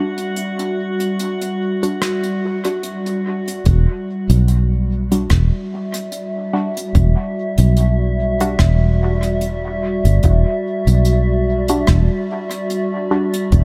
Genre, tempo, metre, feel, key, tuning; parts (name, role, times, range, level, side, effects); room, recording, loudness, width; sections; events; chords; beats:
ambient dub; 73 BPM; 4/4; swing 55% on 16ths; E minor; A4 = 438 Hz
warbly tape-like pad; sustained chords; 0.0-13.6 s; G3 to E5; -24 LUFS; equal; chorus, built-in reverb
filtered dub chord stab; stabs; 0.0-13.3 s; G3 to F#4; -25 LUFS; equal; phaser, dub echo
drifting glass-harmonics texture; texture; 0.0-3.7 s; F#4 to F#5; -34 LUFS; equal; chorus, built-in reverb
soft brush drum kit; drums; 0.2-13.6 s; hi-hat, rim click; -30 LUFS; equal; dub echo
fingered electric bass; bass; 3.7-13.6 s; E1 to B1; -16 LUFS; equal
electronic kick drum; drums; 3.7-13.6 s; -22 LUFS; equal
light reverb; -18 LUFS; mono
0.0-3.7 A section; 3.7-13.6 B section
0.0 Em9
| 0.37 1.19 2.01 2.84 | 3.66 4.48 5.30 6.12 | 6.95 7.77 8.59 9.41 | 10.23 11.05 11.88 12.70 | 13.52